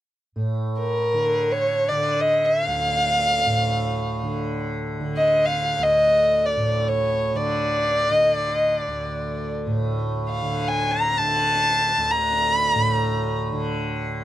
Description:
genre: indian classical.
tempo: free time.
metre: none.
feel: none.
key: D raga todi.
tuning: A4 = 441 Hz.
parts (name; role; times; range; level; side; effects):
tanpura; drone; 0.4-14.2 s; D2 to D3; -26 LUFS; right 1 dB; none.
dark violin; melody; 0.8-13.4 s; Bb4 to Bb5; -20 LUFS; equal; none.
room: light reverb.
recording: dry, close 1970s-style studio recording.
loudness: -19 LUFS.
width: side -13 dB against mid.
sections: 0.4-14.2 A section.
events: none.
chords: none.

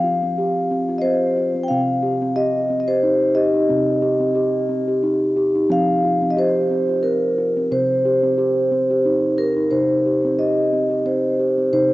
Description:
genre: world meditative, meditative tuned percussion.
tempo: 90 BPM.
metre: 3/4.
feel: swing 55% on 16ths.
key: C minor pentatonic.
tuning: A4 = 440 Hz.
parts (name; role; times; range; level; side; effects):
vibraphone with medium mallets; melody; 0.0-11.9 s; Bb4 to G5; -19 LUFS; equal; cassette tape, analog delay.
steel tongue drum; arpeggios; 0.0-11.9 s; C3 to G4; -19 LUFS; equal; analog delay.
room: wet lush hall reverb, RT60 2.5 s.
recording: home recording on cassette, nothing above 7.9 kHz.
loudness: -16 LUFS.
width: side -17 dB against mid.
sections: 0.0-9.7 A section; 9.7-11.9 B section.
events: none.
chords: 0.0 F5; 1.7 Cm; 5.7 F5; 7.7 Cm.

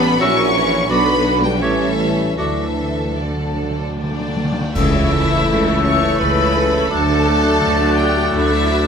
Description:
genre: classical, slow romantic movement for symphony orchestra.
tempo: 74-88 BPM.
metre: 3/4.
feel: rubato.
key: D major.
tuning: A4 = 442 Hz.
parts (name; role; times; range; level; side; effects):
rich studio violin section; melody; 0.0-8.9 s; D5 to C#6; -24 LUFS; left 4 dB; none.
mellow large flute ensemble; second line; 0.0-8.9 s; D5 to F#6; -25 LUFS; equal; none.
rich studio violin section; second line; 0.0-8.9 s; D4 to C#5; -24 LUFS; left 2 dB; none.
rich studio viola section; accompaniment; 0.0-8.9 s; D3 to C#5; -24 LUFS; equal; none.
mellow French horn section; sustained chords; 0.0-8.9 s; D3 to F#4; -24 LUFS; left 2 dB; none.
mellow trombone section; sustained chords; 0.0-8.9 s; D3 to E4; -26 LUFS; right 1 dB; none.
rich studio cello section; bass; 0.0-8.9 s; C#3 to C#4; -25 LUFS; equal; none.
rich studio double bass section; bass; 0.0-8.9 s; A1 to D2; -24 LUFS; equal; none.
warm tuba; bass; 0.0-8.9 s; A1 to D2; -24 LUFS; right 5 dB; none.
bright clarinet; second line; 0.2-8.9 s; A3 to G4; -26 LUFS; left 2 dB; none.
clear oboe; second line; 0.2-8.9 s; C#5 to E5; -24 LUFS; right 1 dB; none.
cymbal swell, clash cymbals and concert bass drum; percussion; 0.2-6.2 s; none; -28 LUFS; equal; none.
timpani; percussion; 2.4-4.7 s; D3; -26 LUFS; left 1 dB; none.
warm trumpet section; stabs; 4.8-8.9 s; A4; -25 LUFS; right 3 dB; none.
room: moderate stone room reverb, RT60 1.0 s.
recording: none.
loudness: -14 LUFS.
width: side -6 dB against mid.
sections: 0.0-4.8 A section; 4.8-8.9 B section.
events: timpani fill 2.4-4.8; band accent 4.8-5.5.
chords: 0.2 F#7/A#; 0.9 Bm; 1.6 A7; 2.4 D; 4.8 A/C#; 6.9 D.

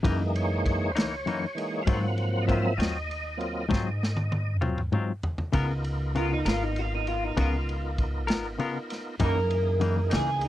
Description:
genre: slow blues.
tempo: 66 BPM (dotted quarters).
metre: 12/8.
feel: straight.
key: Db mixolydian.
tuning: A4 = 436 Hz.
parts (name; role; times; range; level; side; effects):
semi-hollow electric guitar; accompaniment; 0.0-10.3 s; Gb2 to Bb4; -29 LUFS; left 4 dB; harmonic tremolo.
tonewheel organ; sustained chords; 0.0-10.5 s; Fb3 to Gb5; -32 LUFS; right 1 dB; slow rotary speaker, overdrive, chorus vibrato.
upright bass; bass; 0.0-10.5 s; Ab1 to Ab2; -29 LUFS; equal; none.
crunchy breakbeat drum kit; drums; 0.0-10.5 s; kick drum, ride cymbal, snare drum, toms; -31 LUFS; equal; none.
electric guitar through a small old amp; melody; 6.2-10.5 s; Eb4 to Bb4; -29 LUFS; right 2 dB; analog chorus.
room: little or no reverb.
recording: dry, close 1970s-style studio recording.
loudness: -25 LUFS.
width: side -14 dB against mid.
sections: 0.0-5.5 A section; 5.5-10.5 A section.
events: tonewheel organ solo 0.0-5.5; drum fill 3.7-5.5; clean electric guitar solo 5.5-10.5.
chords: 0.0 Gb13; 1.9 Ab13; 5.5 Db13; 9.2 Gb13.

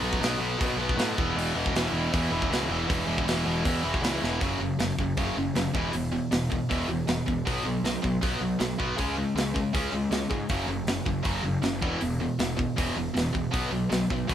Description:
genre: punk rock.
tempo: 158 BPM.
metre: 4/4.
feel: straight.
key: unclear.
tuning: A4 = 439 Hz.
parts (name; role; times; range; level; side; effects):
tight distorted guitar; riff; 0.0-14.3 s; E2 to C#4; -27 LUFS; equal; distortion.
fuzz picked electric bass; bass; 0.0-14.3 s; E1 to B2; -32 LUFS; equal; overdrive.
tight metal drum kit; drums; 0.1-14.3 s; hi-hat, kick drum, snare drum; -31 LUFS; equal; none.
room: light reverb.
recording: band playing live in one room.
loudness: -25 LUFS.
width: side -10 dB against mid.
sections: 0.0-4.4 A section; 4.4-14.3 B section.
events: drum fill 4.2.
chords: 0.0 B5; 1.2 E5; 4.4 F#5; 5.8 E5; 7.5 B5; 9.0 C#5; 10.5 F#5; 11.8 E5; 13.5 B5.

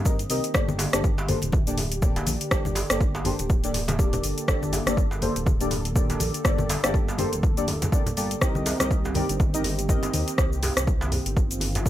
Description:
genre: afro house.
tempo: 122 BPM.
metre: 4/4.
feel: swing 57% on 16ths.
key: G minor.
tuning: A4 = 440 Hz.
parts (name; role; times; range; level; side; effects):
warm analog pad; sustained chords; 0.0-11.9 s; D3 to A4; -33 LUFS; right 2 dB; chorus, sidechain pumping.
smooth synth bass; bass; 0.0-11.9 s; D1 to Eb2; -30 LUFS; equal; sidechain pumping.
djembe; percussion; 0.0-11.9 s; none; -33 LUFS; right 1 dB; none.
deep mellow chord stab; stabs; 0.1-10.4 s; Bb3 to Eb5; -30 LUFS; left 2 dB; chorus, phaser, sidechain pumping, dub echo.
deep house drum kit; drums; 0.1-11.9 s; hi-hat, rim click, shaker; -28 LUFS; equal; none.
electronic kick drum; drums; 0.1-11.9 s; none; -23 LUFS; equal; none.
congas; percussion; 0.5-10.2 s; none; -32 LUFS; left 2 dB; none.
room: digital ambience.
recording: none.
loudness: -22 LUFS.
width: side -13 dB against mid.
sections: 0.0-11.9 A section.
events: none.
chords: 0.0 Cm7; 0.5 Gmadd9; 8.4 Cm7.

